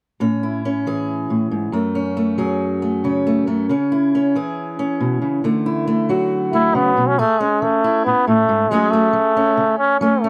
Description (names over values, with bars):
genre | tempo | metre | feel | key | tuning
folk | 138 BPM | 4/4 | straight | A major | A4 = 444 Hz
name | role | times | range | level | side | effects
fingerpicked steel-string acoustic guitar | accompaniment | 0.2-10.3 s | F#2 to G#4 | -20 LUFS | equal | none
trombone with straight mute | melody | 6.5-10.3 s | G#3 to E4 | -18 LUFS | equal | none
room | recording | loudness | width
light reverb | dry, close 1970s-style studio recording | -18 LUFS | mono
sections
0.2-7.2 A section; 7.2-10.3 B section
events
none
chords
0.2 Amaj7; 1.7 F#madd9; 3.7 C#m; 5.4 Dadd9; 7.2 Amaj7; 8.7 F#madd9